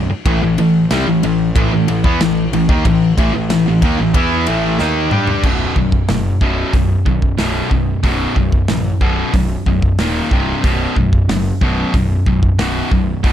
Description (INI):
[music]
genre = heavy metal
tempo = 92 BPM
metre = 4/4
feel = straight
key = B phrygian dominant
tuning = A4 = 442 Hz
[part]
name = high-gain distorted guitar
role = riff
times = 0.0-13.3 s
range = B1 to G4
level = -16 LUFS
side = left 1 dB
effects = distortion
[part]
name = sludgy distorted guitar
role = riff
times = 0.0-5.4 s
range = F#2 to G4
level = -20 LUFS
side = equal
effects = overdrive
[part]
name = fuzz picked electric bass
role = bass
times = 0.0-13.3 s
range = B0 to G2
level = -21 LUFS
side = equal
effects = overdrive
[part]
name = modern studio drum kit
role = drums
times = 0.3-13.3 s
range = crash cymbal, hi-hat, kick drum, ride cymbal, snare drum, toms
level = -18 LUFS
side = equal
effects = none
[sound]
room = studio reverb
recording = dark, warm production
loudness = -13 LUFS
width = side -10 dB against mid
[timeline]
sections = 0.0-5.4 A section; 5.4-13.3 B section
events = drum fill 4.8-5.4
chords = 0.3 A5; 5.4 B5; 10.0 D#5; 10.3 C5; 10.6 B5